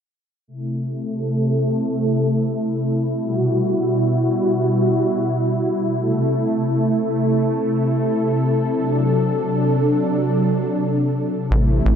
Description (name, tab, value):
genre	synthwave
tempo	free time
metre	none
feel	none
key	unclear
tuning	A4 = 440 Hz
part	warm analog pad	sustained chords	0.5-12.0 s	B2 to A4	-18 LUFS	equal	chorus
part	tight sequencer bass	bass	11.5-12.0 s	A1	-16 LUFS	equal	none
room	wet lush hall reverb, RT60 1.9 s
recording	bright 1980s-style digital production, low-pass filter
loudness	-17 LUFS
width	side -8 dB against mid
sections	0.5-11.5 A section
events	filter sweep 0.5-11.5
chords	0.5 Am; 3.2 Emadd9; 6.0 Am; 8.8 D7